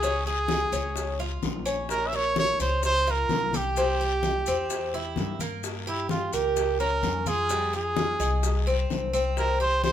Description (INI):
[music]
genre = latin, Cuban son and guajira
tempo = 128 BPM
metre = 4/4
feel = straight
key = F harmonic minor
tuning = A4 = 440 Hz
[part]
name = warm trumpet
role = melody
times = 0.0-9.9 s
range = E4 to E5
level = -26 LUFS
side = right 2 dB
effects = none
[part]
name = Cuban tres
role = arpeggios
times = 0.0-9.9 s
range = G3 to Db5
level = -30 LUFS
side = equal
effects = none
[part]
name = upright bass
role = bass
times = 0.0-9.9 s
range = Bb1 to G2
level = -30 LUFS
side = left 1 dB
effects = none
[part]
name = bongos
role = percussion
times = 0.0-9.9 s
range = none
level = -36 LUFS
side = left 6 dB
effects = none
[part]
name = congas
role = percussion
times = 0.0-9.9 s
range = none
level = -34 LUFS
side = left 2 dB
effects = none
[part]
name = guiro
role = percussion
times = 0.0-9.9 s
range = none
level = -42 LUFS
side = left 6 dB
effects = none
[part]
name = maracas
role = percussion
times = 0.0-9.9 s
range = none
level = -40 LUFS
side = left 7 dB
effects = none
[sound]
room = moderate studio reverb, RT60 0.7 s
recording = minimal, uncompressed stereo recording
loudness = -24 LUFS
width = side -10 dB against mid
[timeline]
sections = 0.0-9.9 A section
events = none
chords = 0.0 Db; 1.9 Bbm; 3.8 C; 5.6 Gdim; 7.5 Fmadd9; 9.4 C5